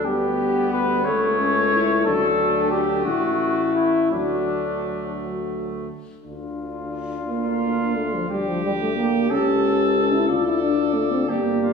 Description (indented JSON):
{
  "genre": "classical, brass quintet",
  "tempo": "55-62 BPM (dotted quarters)",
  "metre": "6/8",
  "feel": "rubato",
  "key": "D major, D minor from 6.2 s",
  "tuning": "A4 = 440 Hz",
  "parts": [
    { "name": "mellow cornet", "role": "melody", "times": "0.0-11.7 s", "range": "D4 to D5", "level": "-24 LUFS", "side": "left 4 dB", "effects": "none" },
    { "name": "mellow French horn", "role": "accompaniment", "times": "0.0-11.7 s", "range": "A3 to G4", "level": "-26 LUFS", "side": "left 4 dB", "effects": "none" },
    { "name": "warm euphonium", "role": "accompaniment", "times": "0.0-11.7 s", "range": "E3 to F4", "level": "-24 LUFS", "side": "equal", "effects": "none" },
    { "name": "warm tuba", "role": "bass", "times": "0.0-11.7 s", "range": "G1 to D2", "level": "-29 LUFS", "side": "right 1 dB", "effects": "none" },
    { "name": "bright trumpet", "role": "second line", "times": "0.1-11.7 s", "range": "A3 to A4", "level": "-28 LUFS", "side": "right 4 dB", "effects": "none" }
  ],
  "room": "wet recital hall reverb, RT60 1.4 s",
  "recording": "recorded in a church or concert hall",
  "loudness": "-19 LUFS",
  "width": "side -5 dB against mid",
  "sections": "0.0-6.2 A section; 6.2-11.7 B section",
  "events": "none",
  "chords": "0.1 G/D; 1.1 A/C#; 2.1 D; 3.1 A5; 4.1 D; 6.2 Dm; 8.3 G5/D; 9.3 A7/C#; 10.3 Dm",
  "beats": "| 0.06 1.06 | 2.05 3.06 | 4.12 5.18 | 6.25 7.29 | 8.30 9.31 | 10.29 11.29"
}